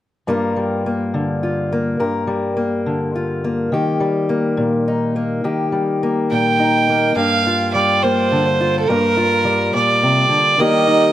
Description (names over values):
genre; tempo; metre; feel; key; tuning
folk; 70 BPM (dotted quarters); 6/8; straight; G minor; A4 = 439 Hz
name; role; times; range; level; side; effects
fingerpicked acoustic archtop guitar; accompaniment; 0.3-11.1 s; G2 to Bb4; -17 LUFS; left 2 dB; none
clear fiddle; melody; 6.3-11.1 s; A4 to G5; -15 LUFS; right 3 dB; plate reverb, digital delay
room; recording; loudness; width
moderate large studio reverb, RT60 0.9 s; none; -15 LUFS; side -12 dB against mid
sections
0.3-7.2 A section; 7.2-11.1 B section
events
none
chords
0.3 Gm7; 3.7 Eb; 7.2 Gm7; 10.6 Eb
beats
| 0.27 1.14 | 2.00 2.86 | 3.72 4.58 | 5.44 6.30 | 7.16 8.02 | 8.87 9.73 | 10.59